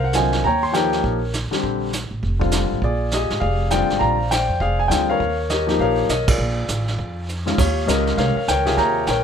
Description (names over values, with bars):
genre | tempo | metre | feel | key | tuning
jazz piano trio | 202 BPM | 4/4 | swing 63% on 8ths | Eb major | A4 = 439 Hz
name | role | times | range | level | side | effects
warm concert grand piano | melody | 0.0-9.2 s | C3 to C6 | -20 LUFS | left 2 dB | none
upright bass | bass | 0.0-9.2 s | F1 to F2 | -23 LUFS | right 1 dB | none
vintage brush drum kit | drums | 0.1-9.2 s | brushed snare drum, crash cymbal, hi-hat, kick drum, ride cymbal, snare drum | -25 LUFS | right 3 dB | none
room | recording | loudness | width
light reverb | minimal, uncompressed stereo recording | -18 LUFS | side -7 dB against mid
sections
0.0-7.6 A section; 7.6-9.2 A section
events
band accent 6.2; drum fill 7.3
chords
0.4 Eb9; 1.6 Bb13; 5.2 Eb9; 6.4 Bb7; 7.6 Eb13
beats
0.14 | 0.43 0.73 1.03 1.33 | 1.63 1.92 2.22 2.52 | 2.82 3.12 3.41 3.71 | 4.01 4.31 4.61 4.90 | 5.20 5.50 5.80 6.09 | 6.39 6.69 6.99 7.28 | 7.58 7.88 8.18 8.47 | 8.77 9.07